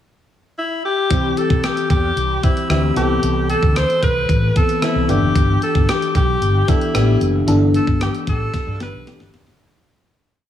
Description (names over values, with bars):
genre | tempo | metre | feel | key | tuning
1980s-style pop | 113 BPM | 4/4 | straight | unclear | A4 = 438 Hz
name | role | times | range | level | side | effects
bright alto saxophone | melody | 0.6-9.3 s | E4 to C5 | -21 LUFS | left 1 dB | tape echo
FM electric piano | accompaniment | 1.1-9.6 s | E3 to A4 | -21 LUFS | left 1 dB | chorus, phaser
fretless electric bass | bass | 1.1-9.6 s | F1 to G2 | -19 LUFS | equal | none
clean 12-bit digital drum machine | drums | 1.1-9.6 s | hi-hat, kick drum, rim click, snare drum | -20 LUFS | equal | none
room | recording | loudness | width
moderate plate reverb, RT60 1.9 s, digital ambience | dreamy mix soaked in reverb | -15 LUFS | side -10 dB against mid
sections
0.0-1.1 pickup bar; 1.1-9.6 verse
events
fade-out 7.5-9.6; drum fill 8.5-9.6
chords
0.0 N.C.; 1.1 C; 3.0 Amadd9/C; 5.1 G6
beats
0.04 0.57 | 1.10 1.64 2.17 2.70 | 3.23 3.76 4.29 4.82 | 5.35 5.88 6.42 6.95 | 7.48 8.01 8.54 9.07